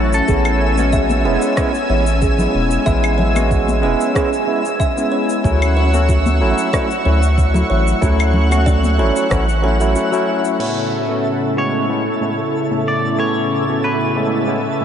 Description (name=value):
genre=sunset chillout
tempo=93 BPM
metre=4/4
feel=swing 53% on 16ths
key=A major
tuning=A4 = 440 Hz
part: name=clean electric guitar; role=melody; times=0.0-0.7, 11.6-14.8 s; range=F#4 to D5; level=-24 LUFS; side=equal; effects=analog delay
part: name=barky tine electric piano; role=accompaniment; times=0.0-14.8 s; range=A2 to F#4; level=-19 LUFS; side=moving between left 3 dB and right 4 dB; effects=medium stereo tremolo, auto-pan, tape echo
part: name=lush unison pad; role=sustained chords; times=0.0-14.8 s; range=C#3 to F#6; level=-21 LUFS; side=equal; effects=chorus
part: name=round analog bass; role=bass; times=0.0-10.0 s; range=E1 to D2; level=-16 LUFS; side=equal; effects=none
part: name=twinkling granular texture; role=texture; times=0.0-14.8 s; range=A4 to E6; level=-30 LUFS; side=right 1 dB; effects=built-in reverb
part: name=deep house drum kit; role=drums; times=0.1-10.7 s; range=claves, crash cymbal, rim click, shaker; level=-29 LUFS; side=left 1 dB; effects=none
part: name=kalimba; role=arpeggios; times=0.3-10.2 s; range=F#4 to E5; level=-25 LUFS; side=right 2 dB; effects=tape echo
part: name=electronic kick drum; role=drums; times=0.3-9.4 s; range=none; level=-20 LUFS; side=equal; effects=none
part: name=congas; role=percussion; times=0.8-9.0 s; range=none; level=-28 LUFS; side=left 2 dB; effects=none
room=wet huge ambient reverb, RT60 8.6 s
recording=dreamy mix soaked in reverb, nothing above 10.6 kHz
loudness=-14 LUFS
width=side -9 dB against mid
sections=0.0-10.6 A section; 10.6-14.8 B section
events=none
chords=0.3 Amaj7; 5.4 Dmaj9; 10.6 Amaj7